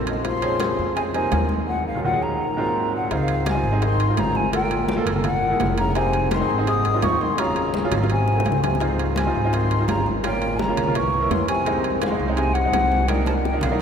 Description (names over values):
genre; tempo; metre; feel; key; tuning
Afro-Cuban jazz; 168 BPM; 4/4; straight; unclear; A4 = 440 Hz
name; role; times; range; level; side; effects
clear baby grand piano; accompaniment; 0.0-13.8 s; Eb2 to A4; -26 LUFS; right 3 dB; none
upright bass; bass; 0.0-13.8 s; F1 to F2; -25 LUFS; equal; none
breathy mellow jazz flute; melody; 0.1-13.8 s; Eb5 to Eb6; -24 LUFS; left 2 dB; none
breathy trombone; second line; 0.1-13.8 s; Gb2 to Ab3; -28 LUFS; left 2 dB; none
congas; percussion; 0.1-13.8 s; none; -30 LUFS; left 1 dB; none
timbales; percussion; 0.1-13.8 s; none; -32 LUFS; right 5 dB; none
bongos; percussion; 0.2-13.8 s; none; -33 LUFS; left 5 dB; none
room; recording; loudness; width
wet cathedral reverb, RT60 5.9 s; recorded in a church or concert hall; -19 LUFS; side -7 dB against mid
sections
0.0-3.1 A section; 3.1-13.8 B section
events
drum fill 7.9-8.8, 13.1-13.8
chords
0.2 Bbm9; 1.7 Ebm7; 2.4 Ab13; 3.1 Dbmaj9; 4.5 Gm9; 5.2 Gb9; 6.0 Fm7; 7.4 Ebm7; 8.1 Ab7b9; 8.8 Dbmaj9; 10.2 Gm7b5; 11.0 C7b9; 11.7 Fm7; 13.1 Cm9